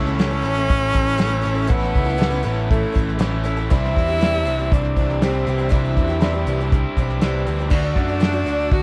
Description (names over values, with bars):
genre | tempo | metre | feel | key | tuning
folk rock and heartland rock | 120 BPM | 4/4 | straight | unclear | A4 = 440 Hz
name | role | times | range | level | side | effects
clear tenor saxophone | melody | 0.0-8.8 s | A3 to F#4 | -26 LUFS | equal | none
picked twelve-string acoustic guitar | accompaniment | 0.0-8.8 s | A2 to A4 | -30 LUFS | equal | subtle chorus, plate reverb
raw garage guitar | riff | 0.0-8.8 s | A2 to F#4 | -29 LUFS | equal | overdrive
picked electric bass | bass | 0.0-8.8 s | A1 to F#2 | -25 LUFS | equal | none
soft brush drum kit | drums | 0.1-8.8 s | crash cymbal, hi-hat, kick drum, snare drum | -23 LUFS | equal | none
room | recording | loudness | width
light reverb | worn, warbling old tape, cassette tape, warbly pitch drift | -20 LUFS | mono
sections
0.0-8.8 A section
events
none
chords
0.0 A; 3.7 Cadd9; 7.7 D